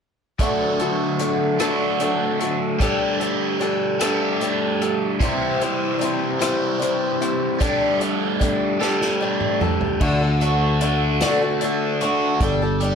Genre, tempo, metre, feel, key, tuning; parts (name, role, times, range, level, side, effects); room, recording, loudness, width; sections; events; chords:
folk rock and heartland rock; 50 BPM (dotted quarters); 6/8; straight; D mixolydian; A4 = 438 Hz
picked swing-style acoustic guitar; accompaniment; 0.4-12.9 s; C3 to C5; -23 LUFS; left 3 dB
overdriven electric guitar; riff; 0.4-12.9 s; C3 to G4; -22 LUFS; right 1 dB; phaser
unplugged drum kit; drums; 0.4-12.9 s; crash cymbal, hi-hat, kick drum, rim click, snare drum, toms; -26 LUFS; equal
fingered electric bass; bass; 10.0-12.9 s; G1 to D2; -22 LUFS; equal
moderate studio reverb, RT60 0.8 s; -18 LUFS; side -6 dB against mid
0.4-10.0 A section; 10.0-12.9 B section
drum fill 8.8-10.0
0.4 D; 2.8 Gsus2; 5.2 C; 7.6 Gsus2; 10.0 D; 12.4 Gsus2